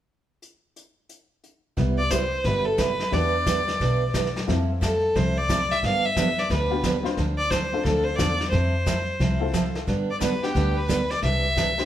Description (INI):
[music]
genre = country, western swing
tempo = 178 BPM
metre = 4/4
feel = swing 64% on 8ths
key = C major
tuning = A4 = 441 Hz
[part]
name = vintage brush drum kit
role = drums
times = 0.4-11.9 s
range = brushed snare drum, hi-hat, kick drum, snare drum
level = -29 LUFS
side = left 1 dB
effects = none
[part]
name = picked steel-string acoustic guitar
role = accompaniment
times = 1.8-11.7 s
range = C3 to A4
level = -28 LUFS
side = right 5 dB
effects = none
[part]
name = dark double bass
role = bass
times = 1.8-11.8 s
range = G1 to G2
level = -26 LUFS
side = left 1 dB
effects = none
[part]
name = rich fiddle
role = melody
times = 2.0-11.9 s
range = G4 to F5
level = -25 LUFS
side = left 1 dB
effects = none
[part]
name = honky-tonk upright piano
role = accompaniment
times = 2.1-11.9 s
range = B3 to C5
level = -31 LUFS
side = left 5 dB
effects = none
[sound]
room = moderate large studio reverb, RT60 1.1 s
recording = band playing live in one room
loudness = -21 LUFS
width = side -11 dB against mid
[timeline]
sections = 0.4-1.8 A section; 1.8-11.9 B section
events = none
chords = 0.4 N.C.; 1.8 Cmaj7; 3.1 Em7; 4.5 Fmaj7; 5.8 G7; 7.2 Dm7; 8.5 Fmaj7; 9.9 G; 11.2 Cadd9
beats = | 0.43 0.77 1.10 1.44 | 1.78 2.12 2.45 2.79 | 3.13 3.46 3.80 4.14 | 4.48 4.81 5.15 5.49 | 5.83 6.16 6.50 6.84 | 7.17 7.51 7.85 8.19 | 8.53 8.86 9.20 9.54 | 9.88 10.21 10.55 10.89 | 11.22 11.56